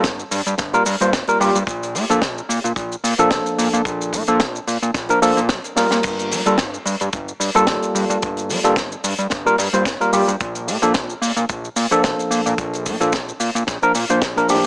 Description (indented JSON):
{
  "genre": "nu-disco, nu disco",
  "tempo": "110 BPM",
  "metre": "4/4",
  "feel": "swing 55% on 16ths",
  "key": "unclear",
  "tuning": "A4 = 441 Hz",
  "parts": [
    { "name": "tine electric piano", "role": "accompaniment", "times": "0.0-14.7 s", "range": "F3 to C5", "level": "-18 LUFS", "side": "equal", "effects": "sidechain pumping, digital delay" },
    { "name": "fat analog bass", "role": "bass", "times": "0.0-14.6 s", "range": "G1 to Bb2", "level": "-22 LUFS", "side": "equal", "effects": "none" },
    { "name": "kick drum", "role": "drums", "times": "0.0-14.3 s", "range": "none", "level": "-27 LUFS", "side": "equal", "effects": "none" },
    { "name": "tight funk drum kit", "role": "drums", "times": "0.0-14.7 s", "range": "crash cymbal, hi-hat, shaker, snare drum", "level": "-23 LUFS", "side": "equal", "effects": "none" }
  ],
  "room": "light reverb, studio reverb",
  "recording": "small speaker sound",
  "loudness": "-16 LUFS",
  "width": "side -29 dB against mid",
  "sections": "0.0-14.7 A section",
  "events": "drum fill 5.8",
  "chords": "0.0 Gm7; 1.7 Bbmaj7; 6.0 Gm9; 10.4 Bbmaj7",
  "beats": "0.04 0.58 1.13 | 1.68 2.22 2.77 3.31 | 3.86 4.40 4.95 5.49 | 6.04 6.58 7.13 7.68 | 8.22 8.77 9.31 9.86 | 10.40 10.95 11.49 12.04 | 12.59 13.13 13.68 14.22"
}